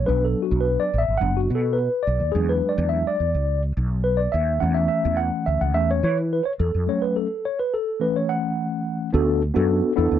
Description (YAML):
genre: uptempo 1960s-style soul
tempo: 106 BPM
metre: 4/4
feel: straight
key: B dorian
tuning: A4 = 440 Hz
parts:
  - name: mellow tine electric piano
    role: accompaniment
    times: 0.0-10.2 s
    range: E3 to F#5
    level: -22 LUFS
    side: left 1 dB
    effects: medium stereo tremolo
  - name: mellow fretless electric bass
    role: bass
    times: 0.0-10.2 s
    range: F#1 to E3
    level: -22 LUFS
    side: equal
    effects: ensemble chorus
room: little or no reverb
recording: none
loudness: -20 LUFS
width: side -10 dB against mid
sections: 0.0-9.1 A section; 9.1-10.2 B section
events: tine electric piano solo 0.0-9.1; break 6.9-9.1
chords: 0.1 Bm; 2.4 E7; 4.6 A; 6.9 F#m; 8.0 A; 9.1 D6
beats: | 0.09 0.66 1.22 1.79 | 2.36 2.92 3.49 4.05 | 4.62 5.19 5.75 6.32 | 6.88 7.45 8.01 8.57 | 9.13 9.70